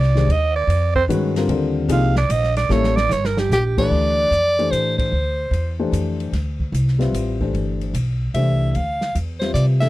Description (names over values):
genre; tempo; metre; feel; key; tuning
modal jazz; 149 BPM; 3/4; swing 66% on 8ths; D dorian from 3.9 s; A4 = 440 Hz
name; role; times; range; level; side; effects
growling alto saxophone; second line; 0.0-3.9 s; G4 to F5; -21 LUFS; right 5 dB; none
upright bass; bass; 0.0-9.9 s; G1 to C3; -20 LUFS; equal; none
open jazz drum kit; drums; 0.0-9.9 s; crash cymbal, hi-hat, kick drum, ride cymbal, snare drum; -30 LUFS; equal; none
warm upright piano; accompaniment; 0.2-9.9 s; C3 to E5; -22 LUFS; left 4 dB; none
breathy soprano saxophone; melody; 3.5-5.7, 8.3-9.9 s; G4 to F5; -20 LUFS; equal; none
room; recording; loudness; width
little or no reverb; dry, close 1970s-style studio recording; -17 LUFS; side -16 dB against mid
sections
0.0-3.9 A section; 3.9-9.9 B section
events
alto saxophone solo 0.0-3.9; drum fill 2.7-3.5; band accent 4.9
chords
0.0 Cm7; 2.7 A7b9; 3.9 Dm9; 6.3 Cadd9; 8.7 Dm9